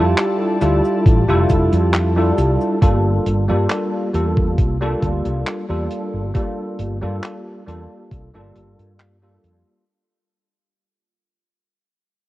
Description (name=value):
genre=vaporwave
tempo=68 BPM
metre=4/4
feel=straight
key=unclear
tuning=A4 = 440 Hz
part: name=bell-like tine electric piano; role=accompaniment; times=0.0-9.8 s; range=G3 to A4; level=-20 LUFS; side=equal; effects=ensemble chorus, vintage 12-bit sampler grit, analog delay
part: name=rich chamber string section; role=sustained chords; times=0.0-2.8 s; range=G4 to A5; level=-30 LUFS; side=left 1 dB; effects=none
part: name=mellow fretless electric bass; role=bass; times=0.0-9.6 s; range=F1 to G2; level=-19 LUFS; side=equal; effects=low-pass filter
part: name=damped 70s drum kit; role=drums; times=0.2-9.6 s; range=cabasa, handclaps, hi-hat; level=-25 LUFS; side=equal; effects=none
part: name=electronic kick drum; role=drums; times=1.1-8.3 s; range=none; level=-17 LUFS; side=equal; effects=overdrive
room=light reverb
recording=worn, warbling old tape, cassette tape, warbly pitch drift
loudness=-16 LUFS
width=side -16 dB against mid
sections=0.0-2.8 A section; 2.8-9.9 B section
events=fade-out 2.8-9.9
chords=0.0 Fmaj13; 2.8 Gm9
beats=0.17 1.06 1.94 | 2.82 3.70 4.59 5.47 | 6.35 7.23 8.12 9.00